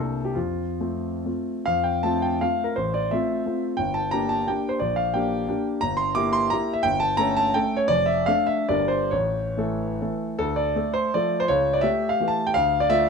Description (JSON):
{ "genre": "classical, romantic triple-time dance for piano with dotted rhythms", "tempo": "127-186 BPM", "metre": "3/4", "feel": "rubato", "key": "F major, D minor from 5.8 s", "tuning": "A4 = 440 Hz", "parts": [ { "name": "warm grand piano", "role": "solo", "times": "0.0-13.1 s", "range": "F1 to D6", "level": "-21 LUFS", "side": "equal", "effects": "none" } ], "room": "moderate large studio reverb, RT60 1.2 s", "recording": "none", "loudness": "-21 LUFS", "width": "side -5 dB against mid", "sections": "0.0-1.7 A section; 1.7-10.4 B section; 10.4-13.1 C section", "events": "none", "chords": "0.4 F; 2.8 F/A; 3.8 Gm; 4.8 Gm/Bb; 5.8 Edim/G; 6.9 A7/G; 7.9 Dm/F; 8.7 Gm; 9.1 A; 10.4 Dm; 11.5 A7/C#; 12.6 Dm" }